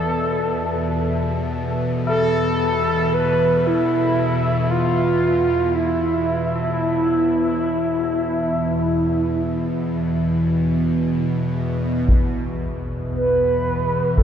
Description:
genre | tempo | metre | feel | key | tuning
dark ambient drone | 57 BPM | 4/4 | straight | unclear | A4 = 440 Hz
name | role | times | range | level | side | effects
mellow horn-like synth lead | melody | 0.0-14.2 s | E4 to B4 | -21 LUFS | right 1 dB | lush chorus, tape echo
dark analog pad | sustained chords | 0.0-14.2 s | B3 to E5 | -34 LUFS | right 1 dB | none
tubular bells | arpeggios | 0.0-14.2 s | D4 to A4 | -31 LUFS | left 3 dB | tape echo
bowed-like drone | drone | 0.0-14.2 s | E2 to B2 | -22 LUFS | left 1 dB | built-in reverb, phaser
quartz singing bowl | texture | 0.0-14.2 s | none | barely audible | none | none
solo taiko drums | percussion | 12.1-14.2 s | none | -21 LUFS | equal | low-pass filter on perc
room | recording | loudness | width
wet cathedral reverb, RT60 5.3 s | dark, warm production | -18 LUFS | side -8 dB against mid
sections
0.0-12.1 A section; 12.1-14.2 B section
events
none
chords
0.0 E5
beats
0.49 1.54 2.60 | 3.65 4.70 5.75 6.80 | 7.86 8.91 9.96 11.02 | 12.07 13.12 14.17

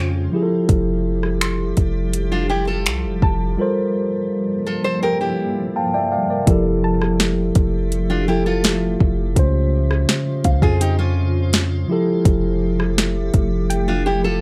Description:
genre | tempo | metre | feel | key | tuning
contemporary R&B | 83 BPM | 4/4 | straight | F major | A4 = 445 Hz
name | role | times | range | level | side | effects
mellow tine electric piano | accompaniment | 0.0-14.4 s | Db3 to A5 | -24 LUFS | equal | plate reverb
granular cloud pad | sustained chords | 0.0-14.4 s | G2 to E5 | -30 LUFS | equal | built-in reverb, plate reverb
nylon-string guitar | arpeggios | 0.0-14.4 s | Db4 to C5 | -26 LUFS | equal | slapback echo, plate reverb
warm 808-style bass | bass | 0.0-14.4 s | F1 to F2 | -23 LUFS | equal | none
soft round pluck | texture | 0.0-14.4 s | F5 to C6 | -32 LUFS | equal | chorus, slapback echo, plate reverb
smooth R&B drum kit | drums | 0.7-13.9 s | finger snaps, hi-hat, kick drum, rim click, snare drum | -20 LUFS | equal | overdrive
room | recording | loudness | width
light reverb | none | -19 LUFS | mono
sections
0.0-6.5 A section; 6.5-14.4 B section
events
tine electric piano fill 5.4-6.5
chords
0.3 Fmaj9; 3.6 Gm11; 6.5 Fmaj9; 9.4 Dbmaj7; 11.9 Fmaj9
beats
| 0.69 1.41 2.14 2.86 | 3.58 4.30 5.03 5.75 | 6.47 7.20 7.92 8.64 | 9.37 10.09 10.81 11.53 | 12.26 12.98 13.70

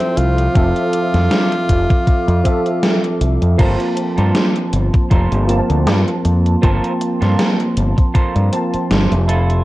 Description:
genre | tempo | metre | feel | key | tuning
vaporwave | 79 BPM | 4/4 | swing 55% on 16ths | unclear | A4 = 441 Hz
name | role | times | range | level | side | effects
breathy tenor saxophone | melody | 0.0-3.2 s | C4 to F4 | -20 LUFS | equal | analog delay
tine electric piano | accompaniment | 0.0-9.3 s | F3 to A5 | -20 LUFS | right 1 dB | ensemble chorus, vintage 12-bit sampler grit, analog delay
warbly tape-like pad | sustained chords | 0.0-9.6 s | Bb3 to D6 | -27 LUFS | right 1 dB | chorus, built-in reverb, vintage 12-bit sampler grit
gated 80s digital drum machine | drums | 0.0-9.6 s | crash cymbal, hi-hat, snare drum | -20 LUFS | equal | gated reverb, gated reverb snare, overdrive
growling fingered electric bass | bass | 0.2-9.6 s | F1 to G2 | -15 LUFS | equal | overdrive
electronic kick drum | drums | 0.6-8.3 s | none | -14 LUFS | equal | none
semi-hollow electric guitar | riff | 3.6-9.6 s | E4 to C5 | -26 LUFS | right 3 dB | analog chorus, analog delay
room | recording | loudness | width
light reverb | cassette tape | -13 LUFS | side -17 dB against mid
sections
0.0-9.6 A section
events
none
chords
0.0 Fmaj7; 3.6 Gm11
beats
| 0.55 1.31 2.07 2.83 | 3.59 4.35 5.11 5.87 | 6.63 7.39 8.15 8.91

